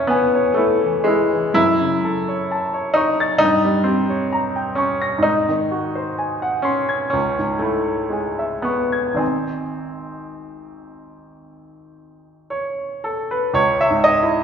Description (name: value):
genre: classical, romantic nocturne for solo piano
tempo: 52-67 BPM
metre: 4/4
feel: rubato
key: C# minor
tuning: A4 = 440 Hz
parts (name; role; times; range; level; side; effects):
- clear baby grand piano; solo; 0.0-14.4 s; G#1 to Bb6; -17 LUFS; equal; none
room: wet recital hall reverb, RT60 1.8 s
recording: recorded in a church or concert hall, nothing above 7.6 kHz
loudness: -17 LUFS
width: side -7 dB against mid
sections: 0.0-13.6 A section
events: none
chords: 0.0 C#m/E; 1.6 F#m7; 3.4 Gdim; 5.3 G#7; 7.1 C#m; 9.2 G#; 13.6 C#m